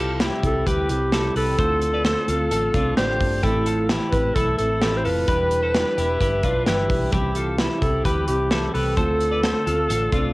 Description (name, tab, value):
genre	jangly indie pop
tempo	130 BPM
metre	4/4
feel	straight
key	C major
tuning	A4 = 440 Hz
part	breathy clarinet	melody	0.0-10.3 s	G4 to C5	-23 LUFS	equal	cassette tape
part	fingerpicked steel-string acoustic guitar	accompaniment	0.0-10.3 s	A2 to B4	-28 LUFS	right 2 dB	cassette tape
part	twelve-string electric guitar	arpeggios	0.0-10.3 s	D4 to D5	-27 LUFS	left 3 dB	cassette tape
part	vintage muted fingered electric bass	bass	0.0-10.3 s	E1 to D2	-26 LUFS	equal	none
part	modern studio drum kit	drums	0.2-10.2 s	hi-hat, kick drum, snare drum	-25 LUFS	equal	cassette tape
room	light reverb, small room reverb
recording	home recording on cassette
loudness	-19 LUFS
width	side -21 dB against mid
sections	0.0-10.3 A section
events	none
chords	0.0 C; 1.6 Dm7; 3.4 Am; 5.3 Em7; 7.1 C; 9.0 Dm7